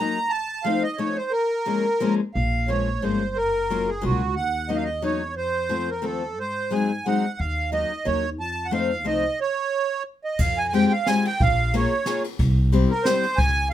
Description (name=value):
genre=musette waltz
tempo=180 BPM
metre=3/4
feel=swing 55% on 8ths, rubato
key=Bb minor, F minor from 10.4 s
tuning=A4 = 438 Hz
part: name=accordion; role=melody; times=0.0-13.7 s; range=Gb4 to Bb5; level=-24 LUFS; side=right 3 dB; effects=light tremolo tuning
part: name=picked steel-string acoustic guitar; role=accompaniment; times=0.0-13.2 s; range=F3 to Ab4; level=-24 LUFS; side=left 5 dB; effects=none
part: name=upright bass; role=bass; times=0.0-13.7 s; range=Gb1 to Ab2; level=-26 LUFS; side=equal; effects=none
part: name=jazz brush drum kit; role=drums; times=10.4-13.5 s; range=crash cymbal, kick drum, ride cymbal, snare drum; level=-26 LUFS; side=equal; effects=none
room=light reverb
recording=minimal, uncompressed stereo recording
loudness=-21 LUFS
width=side -11 dB against mid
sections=0.0-2.3 A section; 2.3-10.4 A section; 10.4-13.7 B section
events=none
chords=0.3 F7; 1.3 Bbm7; 3.4 Gbmaj7; 4.4 Ebm7; 5.4 F; 6.4 Ab7; 7.4 Ebm7; 8.4 F7; 9.4 N.C.; 10.4 Fmadd9; 11.4 Bbm7; 12.4 C